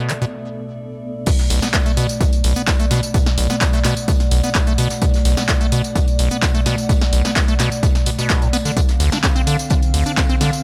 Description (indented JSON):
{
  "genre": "acid house",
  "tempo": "128 BPM",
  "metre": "4/4",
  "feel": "straight",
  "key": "B phrygian",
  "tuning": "A4 = 440 Hz",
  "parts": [
    { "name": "dark analog pad", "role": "sustained chords", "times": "0.0-10.6 s", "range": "B2 to F5", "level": "-27 LUFS", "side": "equal", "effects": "chorus, sidechain pumping" },
    { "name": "acid bass, square", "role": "riff", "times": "0.0-10.5 s", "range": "B1 to D4", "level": "-22 LUFS", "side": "equal", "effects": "tube saturation, digital delay" },
    { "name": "granular cloud pad", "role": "texture", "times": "0.0-10.6 s", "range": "B3 to F#5", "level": "-40 LUFS", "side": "equal", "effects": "none" },
    { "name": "punchy analog drum machine", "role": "drums", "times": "0.1-10.6 s", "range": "crash cymbal, handclaps, hi-hat, ride cymbal, snare drum, tambourine", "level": "-25 LUFS", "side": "equal", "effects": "none" },
    { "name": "electronic kick drum", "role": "drums", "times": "1.3-10.3 s", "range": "none", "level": "-20 LUFS", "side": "equal", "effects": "none" },
    { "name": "soft brush drum kit", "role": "drums", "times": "1.3-10.5 s", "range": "hi-hat, snare drum, tambourine", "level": "-36 LUFS", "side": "equal", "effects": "none" }
  ],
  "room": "little or no reverb",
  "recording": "none",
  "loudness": "-17 LUFS",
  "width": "mono",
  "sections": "0.0-1.3 A section; 1.3-10.6 B section",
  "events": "filter sweep on analog synth pad 0.0-1.3; break 0.3-1.3; drop 1.3-10.6",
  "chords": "0.0 Bm7; 8.8 Dm7"
}